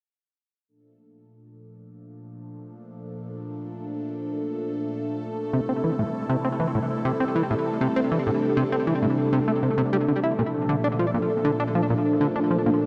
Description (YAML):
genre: ambient, sequencer-driven space music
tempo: 99 BPM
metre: 4/4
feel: straight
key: unclear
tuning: A4 = 440 Hz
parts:
  - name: phased analog pad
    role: sustained chords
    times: 0.7-12.9 s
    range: Bb2 to A4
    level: -28 LUFS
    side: equal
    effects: phaser, chorus
  - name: plucky analog bass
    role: riff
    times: 5.5-12.7 s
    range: A2 to E4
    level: -27 LUFS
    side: equal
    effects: tape echo
room: wet huge ambient reverb, RT60 9.1 s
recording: dreamy mix soaked in reverb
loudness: -25 LUFS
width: mono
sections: 0.7-10.4 A section; 10.4-12.9 B section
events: fade-in on analog synth pad 0.7-10.4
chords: 0.7 Bbmaj7; 5.5 Am7; 10.4 Bbmaj7